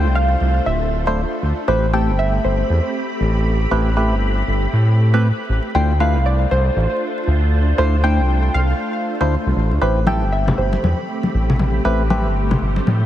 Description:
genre	deep house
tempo	118 BPM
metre	4/4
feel	swing 60% on 16ths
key	A minor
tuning	A4 = 440 Hz
part	soft string machine	sustained chords	0.0-13.1 s	A3 to B5	-25 LUFS	equal	phaser, ensemble chorus, vintage 12-bit sampler grit
part	percussive organ stab	stabs	0.0-12.3 s	A3 to C5	-23 LUFS	equal	chorus, phaser, ping-pong delay
part	smooth synth bass	bass	0.0-13.1 s	D1 to A2	-17 LUFS	equal	none
part	soft round pluck	melody	0.2-11.1 s	C5 to G5	-23 LUFS	equal	analog chorus, ping-pong delay
part	congas	percussion	10.1-13.0 s	none	-21 LUFS	left 2 dB	none
room	light reverb, digital ambience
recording	dense, heavily limited modern master, vinyl crackle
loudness	-15 LUFS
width	side -12 dB against mid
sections	0.0-13.1 A section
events	none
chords	0.0 Dm9; 1.7 Am9; 5.7 Dm9; 9.8 Am9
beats	0.15 0.66 1.17 | 1.68 2.19 2.70 3.21 | 3.71 4.22 4.73 5.24 | 5.75 6.26 6.76 7.27 | 7.78 8.29 8.80 9.31 | 9.81 10.32 10.83 11.34 | 11.85 12.36 12.87

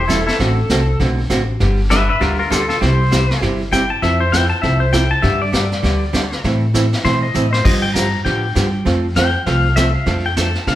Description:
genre	country, western swing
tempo	199 BPM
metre	4/4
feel	swing 61% on 8ths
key	unclear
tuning	A4 = 440 Hz
part	pedal steel guitar	second line	0.0-10.8 s	E4 to Bb5	-19 LUFS	left 3 dB	none
part	upright bass	bass	0.0-10.8 s	E1 to D3	-18 LUFS	equal	none
part	archtop guitar, miked and amplified	accompaniment	0.1-10.8 s	C3 to A4	-20 LUFS	right 2 dB	none
part	vintage brush drum kit	drums	0.1-10.8 s	brushed snare drum, crash cymbal, hi-hat, kick drum, snare drum	-22 LUFS	equal	none
room	wet large studio reverb, RT60 1.1 s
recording	band playing live in one room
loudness	-14 LUFS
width	side -13 dB against mid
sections	0.0-10.8 A section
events	pedal steel guitar solo 0.0-10.8; drum fill 7.3-7.6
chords	0.4 D7/A; 1.6 G; 2.8 C; 4.0 Fmaj7; 5.2 G; 6.4 Am; 7.6 G7; 8.9 F; 10.1 Dm/F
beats	0.09 | 0.39 0.70 1.00 1.30 | 1.60 1.91 2.21 2.51 | 2.81 3.12 3.42 3.72 | 4.02 4.33 4.63 4.93 | 5.23 5.53 5.84 6.14 | 6.44 6.74 7.04 7.35 | 7.65 7.95 8.25 8.55 | 8.86 9.16 9.46 9.76 | 10.06 10.37 10.67

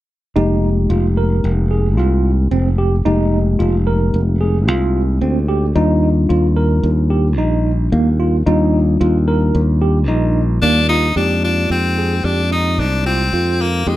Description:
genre	progressive instrumental, progressive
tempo	111 BPM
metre	5/4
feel	straight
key	F dorian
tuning	A4 = 440 Hz
part	mellow tine electric piano	accompaniment	0.4-14.0 s	G3 to G4	-21 LUFS	left 3 dB	none
part	tine electric piano	arpeggios	0.4-14.0 s	Bb3 to Bb4	-21 LUFS	right 2 dB	fast stereo tremolo, analog delay
part	modern bright fingered electric bass	bass	0.4-14.0 s	F1 to F2	-15 LUFS	equal	none
part	edgy tenor saxophone	melody	10.6-14.0 s	Ab3 to Eb4	-18 LUFS	left 3 dB	analog delay
room	light reverb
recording	none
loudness	-13 LUFS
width	side -15 dB against mid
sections	0.4-11.2 A section; 11.2-14.0 B section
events	none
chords	0.4 Fm11; 5.8 Ebmaj9; 11.2 Fm11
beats	| 0.36 0.90 1.44 1.98 2.52 | 3.06 3.60 4.14 4.68 5.22 | 5.76 6.30 6.84 7.38 7.92 | 8.46 9.00 9.54 10.08 10.62 | 11.16 11.71 12.25 12.79 13.33 | 13.87

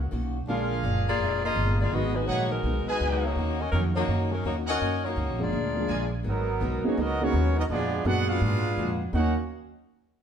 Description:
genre	jazz, big band swing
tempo	166 BPM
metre	4/4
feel	swing 64% on 8ths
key	Eb minor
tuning	A4 = 440 Hz
part	upright bass	bass	0.0-9.4 s	F1 to Ab2	-28 LUFS	equal	none
part	picked old ladder-braced acoustic guitar	accompaniment	0.1-9.3 s	Ab2 to Bb4	-34 LUFS	left 2 dB	none
part	warm saxophone section	melody	0.5-6.1 s	Gb3 to Eb5	-28 LUFS	left 3 dB	none
part	dark baby grand piano	accompaniment	0.5-9.3 s	Db3 to Bb4	-32 LUFS	right 2 dB	none
part	clear trumpet section	stabs	0.5-6.0 s	Ab4 to Ab5	-33 LUFS	right 3 dB	none
part	clear trombone section	second line	5.4-9.4 s	Eb3 to Bb4	-33 LUFS	right 3 dB	none
part	clear trumpet section	melody	6.3-9.4 s	Gb3 to Gb5	-31 LUFS	right 3 dB	none
room	wet large studio reverb, RT60 1.0 s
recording	heard from further back in the room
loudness	-24 LUFS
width	side -8 dB against mid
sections	0.0-6.3 A section; 6.3-9.1 B section; 9.1-10.2 C section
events	none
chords	0.5 Bb7; 1.9 Abm7; 3.4 Ebm7; 5.5 Bb7; 6.3 Abm9; 7.7 Bb7b9b13; 9.1 Ebm7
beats	0.12 | 0.48 0.84 1.20 1.56 | 1.92 2.28 2.64 3.00 | 3.37 3.73 4.09 4.45 | 4.81 5.17 5.53 5.89 | 6.25 6.61 6.97 7.34 | 7.70 8.06 8.42 8.78 | 9.14

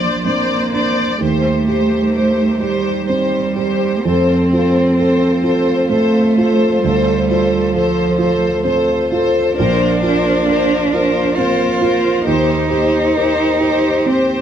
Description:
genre	neoclassical piano and strings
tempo	65 BPM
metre	3/4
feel	rubato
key	Bb major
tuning	A4 = 443 Hz
part	rich chamber violin section	melody	0.0-14.4 s	C5 to D5	-19 LUFS	left 2 dB	none
part	warm cello	second line	0.0-14.4 s	F3 to F4	-17 LUFS	right 2 dB	none
part	dark upright piano	accompaniment	0.0-14.4 s	Bb1 to C5	-19 LUFS	right 3 dB	none
part	rich viola	accompaniment	0.0-14.4 s	G4 to C5	-22 LUFS	left 1 dB	none
part	rich studio string section	sustained chords	0.0-14.4 s	G3 to C5	-27 LUFS	left 3 dB	none
room	moderate studio reverb, RT60 0.6 s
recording	dark, warm production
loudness	-13 LUFS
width	side -9 dB against mid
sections	0.0-14.4 A section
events	none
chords	0.0 Bbadd9; 1.2 Eb6; 4.0 F; 6.8 Dm7; 9.6 Bbadd9; 12.3 Eb6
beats	0.25 | 1.21 2.15 3.07 | 4.04 4.97 5.90 | 6.83 7.74 8.65 | 9.56 10.48 11.37 | 12.26 13.16 14.07

